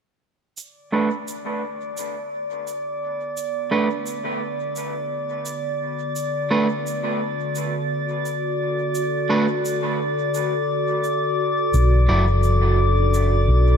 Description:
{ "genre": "ambient dub", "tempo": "86 BPM", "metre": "4/4", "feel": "swing 57% on 16ths", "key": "B minor", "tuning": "A4 = 436 Hz", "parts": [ { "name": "warbly tape-like pad", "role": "sustained chords", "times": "0.6-13.8 s", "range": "D3 to A4", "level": "-27 LUFS", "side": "right 1 dB", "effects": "chorus, built-in reverb" }, { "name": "shaker", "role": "drums", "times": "0.6-13.3 s", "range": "none", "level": "-37 LUFS", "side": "right 5 dB", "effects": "none" }, { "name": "drifting glass-harmonics texture", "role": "texture", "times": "1.2-13.8 s", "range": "D5", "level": "-25 LUFS", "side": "left 2 dB", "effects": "chorus, built-in reverb" }, { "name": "electric guitar at the edge of break-up", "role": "stabs", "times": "0.9-12.2 s", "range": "F#3 to D5", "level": "-25 LUFS", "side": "right 3 dB", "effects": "low-pass filter, dub echo" }, { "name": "fingered electric bass", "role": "bass", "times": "11.7-13.8 s", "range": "F#1 to B1", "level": "-16 LUFS", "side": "equal", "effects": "tube saturation" } ], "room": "light reverb, small room ambience", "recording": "none", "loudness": "-20 LUFS", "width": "side -7 dB against mid", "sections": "0.6-13.8 A section", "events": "fade-in on ambient pad 0.6-13.8", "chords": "0.6 Bm7; 11.7 Dadd9" }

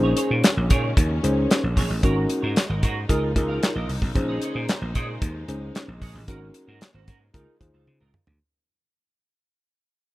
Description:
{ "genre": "early-eighties boogie funk", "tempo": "113 BPM", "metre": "4/4", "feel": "straight", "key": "Bb minor", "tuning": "A4 = 440 Hz", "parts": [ { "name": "tine electric piano", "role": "accompaniment", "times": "0.0-8.0 s", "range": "Db4 to C5", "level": "-25 LUFS", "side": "left 1 dB", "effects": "none" }, { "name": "warm studio string section", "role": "sustained chords", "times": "0.0-8.4 s", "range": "Db3 to C5", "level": "-34 LUFS", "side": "left 1 dB", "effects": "none" }, { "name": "clean electric guitar", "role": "riff", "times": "0.0-8.3 s", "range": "Db4 to F5", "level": "-34 LUFS", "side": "right 6 dB", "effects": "ensemble chorus" }, { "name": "vintage slap bass", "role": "bass", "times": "0.0-8.4 s", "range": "Ab1 to Db3", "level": "-26 LUFS", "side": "equal", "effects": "none" }, { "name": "damped 70s drum kit", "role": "drums", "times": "0.2-8.4 s", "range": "handclaps, hi-hat, kick drum, snare drum, toms", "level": "-21 LUFS", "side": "equal", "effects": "none" } ], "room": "small room ambience", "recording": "rough home demo mix", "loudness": "-20 LUFS", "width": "side -17 dB against mid", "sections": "0.0-8.4 A section", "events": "fade-out 0.0-8.4; drum fill 7.9-8.4", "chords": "0.0 Bbm11; 2.0 Ab9sus4; 3.1 Db69; 4.2 Bbm11; 6.3 Ab9sus4; 7.3 Db69" }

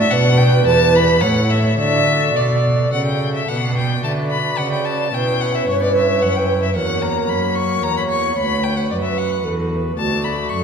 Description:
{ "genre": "classical, baroque-style sonata movement with continuo", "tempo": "110 BPM", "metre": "3/4", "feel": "rubato", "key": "D major, B minor from 3.5 s", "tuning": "A4 = 440 Hz", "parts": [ { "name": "warm violin", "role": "melody", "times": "0.0-10.6 s", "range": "C#5 to C#6", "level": "-21 LUFS", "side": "left 6 dB", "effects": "none" }, { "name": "mellow hollow concert flute", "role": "second line", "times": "0.0-10.6 s", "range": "F#4 to E5", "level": "-20 LUFS", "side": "right 4 dB", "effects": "none" }, { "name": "pipe organ, foundations", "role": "accompaniment", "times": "0.0-10.6 s", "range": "D2 to D5", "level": "-24 LUFS", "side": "left 1 dB", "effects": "none" }, { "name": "warm cello", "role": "bass", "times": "0.0-10.6 s", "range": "D2 to D3", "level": "-20 LUFS", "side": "equal", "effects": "none" } ], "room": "wet recital hall reverb, RT60 1.7 s", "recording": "lossy compression artefacts", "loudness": "-15 LUFS", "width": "side -6 dB against mid", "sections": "0.0-3.5 A section; 3.5-10.6 A section", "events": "none", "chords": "0.1 Bm; 0.7 Em7; 1.2 A; 1.8 D; 3.5 Bm; 5.1 C#dim; 6.8 F#7/E; 8.4 Bm/D; 10.0 D" }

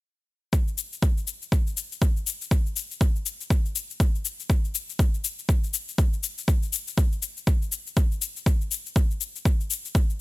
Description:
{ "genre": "afro house", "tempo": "121 BPM", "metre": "4/4", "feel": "swing 60% on 16ths", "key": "none", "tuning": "none", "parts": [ { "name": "cabasa", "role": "drums", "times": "0.5-10.2 s", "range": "none", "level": "-30 LUFS", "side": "left 8 dB", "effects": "overdrive" }, { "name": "electronic kick drum", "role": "drums", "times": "0.5-10.1 s", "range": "none", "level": "-22 LUFS", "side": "equal", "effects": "overdrive" } ], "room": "little or no reverb", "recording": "bright 1980s-style digital production", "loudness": "-23 LUFS", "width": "side -19 dB against mid", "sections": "0.5-10.2 A section", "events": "none", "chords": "none" }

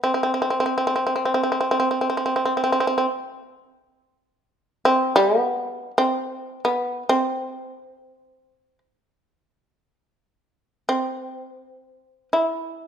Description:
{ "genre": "japanese traditional", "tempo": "free time", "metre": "none", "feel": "none", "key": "C ryukyu", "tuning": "A4 = 438 Hz", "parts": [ { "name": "shamisen", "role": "solo", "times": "0.0-12.9 s", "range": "B3 to E4", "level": "-20 LUFS", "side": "equal", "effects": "none" } ], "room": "moderate recital hall reverb, RT60 1.4 s", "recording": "minimal, uncompressed stereo recording", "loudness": "-20 LUFS", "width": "side -8 dB against mid", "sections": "0.0-12.9 A section", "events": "none", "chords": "none" }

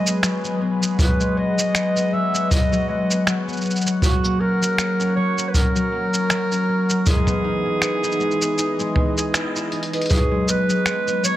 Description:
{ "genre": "folktronica", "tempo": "79 BPM", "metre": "4/4", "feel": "swing 56% on 16ths", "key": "G# minor", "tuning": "A4 = 440 Hz", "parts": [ { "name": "mellow clarinet", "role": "melody", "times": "0.0-11.4 s", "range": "F#4 to E5", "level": "-24 LUFS", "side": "right 2 dB", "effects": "tape echo" }, { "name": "warm analog pad", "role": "sustained chords", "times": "0.0-11.4 s", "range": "E3 to F#5", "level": "-30 LUFS", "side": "right 1 dB", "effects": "chorus, tremolo" }, { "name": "concert harp", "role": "arpeggios", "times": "0.0-11.4 s", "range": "F#3 to B4", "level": "-22 LUFS", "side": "left 2 dB", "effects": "tape echo" }, { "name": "lo-fi sampler-style drum kit", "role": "drums", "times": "0.1-11.4 s", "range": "cabasa, finger snaps, hi-hat, toms", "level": "-24 LUFS", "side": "equal", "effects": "none" }, { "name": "kick drum", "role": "drums", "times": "1.0-10.3 s", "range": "none", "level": "-20 LUFS", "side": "equal", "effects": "none" } ], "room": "light reverb, small room ambience", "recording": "none", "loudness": "-18 LUFS", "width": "side -14 dB against mid", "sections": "0.0-10.1 A section; 10.1-11.4 A section", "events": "filter sweep on harp 0.0-10.1; kick drops out 8.6-10.1; band accent 9.3-9.7; drum fill 9.7-10.1", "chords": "0.0 G#m7; 4.0 F#; 7.1 Emaj7; 10.1 G#m7" }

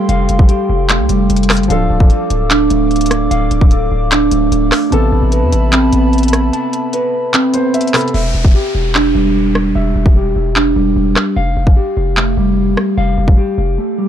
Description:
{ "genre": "hip hop, trap", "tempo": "149 BPM", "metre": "4/4", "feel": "half-time", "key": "E phrygian", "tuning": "A4 = 440 Hz", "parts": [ { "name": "dark concert grand piano", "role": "accompaniment", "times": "0.0-8.2 s", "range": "C3 to B5", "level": "-22 LUFS", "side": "left 1 dB", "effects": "none" }, { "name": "dark analog pad", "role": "sustained chords", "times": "0.0-8.1 s", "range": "A4 to D6", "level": "-24 LUFS", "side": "right 2 dB", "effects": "chorus" }, { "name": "mellow electric guitar", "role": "arpeggios", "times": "0.0-14.1 s", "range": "G3 to A5", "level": "-15 LUFS", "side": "right 1 dB", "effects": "tape echo" }, { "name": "hard-hitting 808-style bass", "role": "bass", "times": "0.1-13.8 s", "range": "D1 to E2", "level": "-16 LUFS", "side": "equal", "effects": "none" }, { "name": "trap drum kit", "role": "drums", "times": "0.1-13.4 s", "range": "crash cymbal, handclaps, hi-hat, kick drum, rim click", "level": "-13 LUFS", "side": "equal", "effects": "none" }, { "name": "downlifter", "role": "sound effects", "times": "8.1-11.4 s", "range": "none", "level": "-28 LUFS", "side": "equal", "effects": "none" } ], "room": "little or no reverb", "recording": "dark, warm production", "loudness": "-11 LUFS", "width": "side -10 dB against mid", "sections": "0.0-8.1 A section; 8.1-14.1 B section", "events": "break 6.5-8.1; grand piano fill 7.3-8.1; hi-hats muted 8.1-14.1; drums muted 13.8-14.1", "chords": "0.0 Fadd9; 1.7 Dm; 4.9 Amadd9; 8.1 Em7; 11.4 Fadd9" }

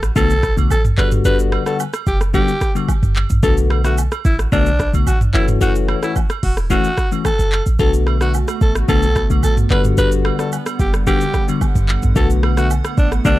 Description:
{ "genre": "afrobeats", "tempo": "110 BPM", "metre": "4/4", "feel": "straight", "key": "B minor", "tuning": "A4 = 439 Hz", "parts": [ { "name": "clean 808-style bass", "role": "bass", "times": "0.0-13.4 s", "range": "E1 to B1", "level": "-17 LUFS", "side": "equal", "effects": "none" }, { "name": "afro-pop drum kit", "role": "drums", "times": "0.0-13.4 s", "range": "handclaps, hi-hat, kick drum, rim click, shaker, toms", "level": "-20 LUFS", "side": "right 1 dB", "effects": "overdrive" }, { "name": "breathy alto saxophone", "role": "melody", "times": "0.2-13.4 s", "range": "D4 to B4", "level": "-21 LUFS", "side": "equal", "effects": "digital delay" }, { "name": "bell-like tine electric piano", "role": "accompaniment", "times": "0.2-13.4 s", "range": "D3 to F#4", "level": "-20 LUFS", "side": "left 7 dB", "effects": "phaser" }, { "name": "agogo bells and woodblock", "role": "percussion", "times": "0.2-13.4 s", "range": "none", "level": "-30 LUFS", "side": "right 13 dB", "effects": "none" }, { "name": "hollow soft pad", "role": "sustained chords", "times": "7.8-13.4 s", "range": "D3 to F#5", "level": "-26 LUFS", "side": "right 2 dB", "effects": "chorus" } ], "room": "little or no reverb", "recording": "dark, warm production", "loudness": "-14 LUFS", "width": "side -16 dB against mid", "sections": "0.0-13.4 A section", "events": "none", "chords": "0.0 Bm7; 1.0 Gmaj7; 3.4 Bm7; 5.3 F#m7; 7.8 Bm7; 9.7 Gmaj7; 12.2 Bm7" }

